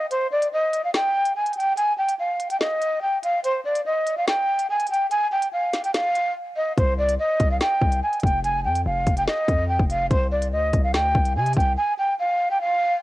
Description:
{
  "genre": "hip hop, drill",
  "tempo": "144 BPM",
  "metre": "4/4",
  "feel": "half-time",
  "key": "C minor",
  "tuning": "A4 = 441 Hz",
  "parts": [
    { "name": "breathy jazz flute", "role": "melody", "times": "0.0-12.9 s", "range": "C5 to Ab5", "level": "-21 LUFS", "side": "equal", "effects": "low-pass filter, cassette tape, plate reverb" },
    { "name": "drill drum kit", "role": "drums", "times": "0.1-11.7 s", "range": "hi-hat, kick drum, snare drum", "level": "-24 LUFS", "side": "equal", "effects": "cassette tape" },
    { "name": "hard-hitting 808-style bass", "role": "bass", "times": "6.8-11.8 s", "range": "F1 to C3", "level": "-25 LUFS", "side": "equal", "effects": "none" }
  ],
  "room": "moderate small room reverb, RT60 0.6 s",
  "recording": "home recording on cassette",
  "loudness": "-20 LUFS",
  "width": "side -16 dB against mid",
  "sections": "0.0-13.0 A section",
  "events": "kick muted 0.1-6.8; break 6.4-6.8",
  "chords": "0.1 N.C.; 6.8 C5; 8.4 F7sus2; 10.1 C5; 11.8 N.C."
}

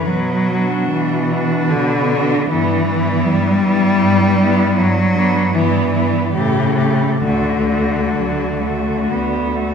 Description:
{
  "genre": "classical, lyrical piece for cello ensemble",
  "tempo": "64-80 BPM",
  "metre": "3/4",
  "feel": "rubato",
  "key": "D major from 4.8 s",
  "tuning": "A4 = 439 Hz",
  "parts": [
    { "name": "warm cello", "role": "melody", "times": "0.0-9.7 s", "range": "D4 to G4", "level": "-24 LUFS", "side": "left 5 dB", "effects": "none" },
    { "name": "rich cello", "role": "accompaniment", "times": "0.0-9.5 s", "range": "C#3 to G3", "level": "-17 LUFS", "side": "left 1 dB", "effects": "none" },
    { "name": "rich cello", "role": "bass", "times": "0.1-9.7 s", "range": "D2 to B2", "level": "-21 LUFS", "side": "right 1 dB", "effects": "none" },
    { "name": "rich cello", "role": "second line", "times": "0.5-9.7 s", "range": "F#3 to D4", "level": "-21 LUFS", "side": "right 3 dB", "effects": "none" }
  ],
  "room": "wet scoring stage reverb, RT60 1.6 s",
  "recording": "recorded in a church or concert hall",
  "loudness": "-14 LUFS",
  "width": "side -6 dB against mid",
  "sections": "0.0-9.7 A section",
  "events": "none",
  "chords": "0.1 Bm; 2.5 Em/G; 4.8 G; 5.5 Em/G; 6.4 A7; 7.3 D"
}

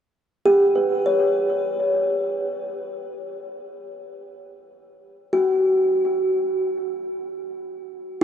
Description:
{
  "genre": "ambient",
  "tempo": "free time",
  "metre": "none",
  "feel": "none",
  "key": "G lydian",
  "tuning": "A4 = 445 Hz",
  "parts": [
    { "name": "kalimba", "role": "solo", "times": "0.5-8.2 s", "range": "F#4 to C#5", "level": "-20 LUFS", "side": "equal", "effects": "tape echo" }
  ],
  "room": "wet huge ambient reverb, RT60 7.8 s",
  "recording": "worn, warbling old tape, cassette tape, warbly pitch drift",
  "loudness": "-19 LUFS",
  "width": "side -8 dB against mid",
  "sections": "0.5-8.2 A section",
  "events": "none",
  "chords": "0.5 Gmaj7"
}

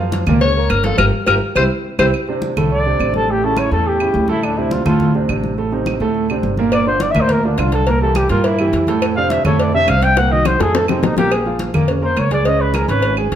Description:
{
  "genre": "Afro-Cuban jazz",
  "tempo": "209 BPM",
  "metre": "4/4",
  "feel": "straight",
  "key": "unclear",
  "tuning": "A4 = 440 Hz",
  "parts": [
    { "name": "warm concert grand piano", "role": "accompaniment", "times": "0.0-13.4 s", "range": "A2 to Db6", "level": "-19 LUFS", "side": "right 4 dB", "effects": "none" },
    { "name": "upright bass", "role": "bass", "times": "0.0-13.4 s", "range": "Gb1 to G2", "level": "-19 LUFS", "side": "equal", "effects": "none" },
    { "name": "congas", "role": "percussion", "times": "0.1-13.4 s", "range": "none", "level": "-23 LUFS", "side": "left 2 dB", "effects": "none" },
    { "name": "cowbell and bongos", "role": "percussion", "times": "0.1-2.1, 6.7-13.4 s", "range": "none", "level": "-23 LUFS", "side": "left 3 dB", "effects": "none" },
    { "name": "claves", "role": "percussion", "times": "0.3-13.3 s", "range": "none", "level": "-27 LUFS", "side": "right 5 dB", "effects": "none" },
    { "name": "bright tenor saxophone", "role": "second line", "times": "0.4-2.1 s", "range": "A4 to Db5", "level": "-18 LUFS", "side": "left 6 dB", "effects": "none" },
    { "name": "breathy trumpet", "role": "melody", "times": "2.7-13.2 s", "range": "C4 to G5", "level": "-18 LUFS", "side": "left 1 dB", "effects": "none" }
  ],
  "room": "wet large studio reverb, RT60 1.4 s",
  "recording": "none",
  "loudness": "-13 LUFS",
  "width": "side -10 dB against mid",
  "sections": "0.0-2.1 A section; 2.1-11.3 A section; 11.3-13.4 A section",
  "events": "tenor saxophone solo 0.0-2.1; band accent 1.0-2.1; drum fill 1.3-2.1, 10.2-11.3; trumpet solo 2.1-13.4",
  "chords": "0.0 Gbmaj7; 1.0 Gm7; 1.6 C; 2.1 Amadd11; 3.3 A7; 4.4 Dm7; 5.6 Adim; 6.2 D5; 6.7 Gm7; 7.9 C7; 9.0 F6; 10.2 Cm7b5; 10.7 F7; 11.3 Bbm7; 12.5 Db5"
}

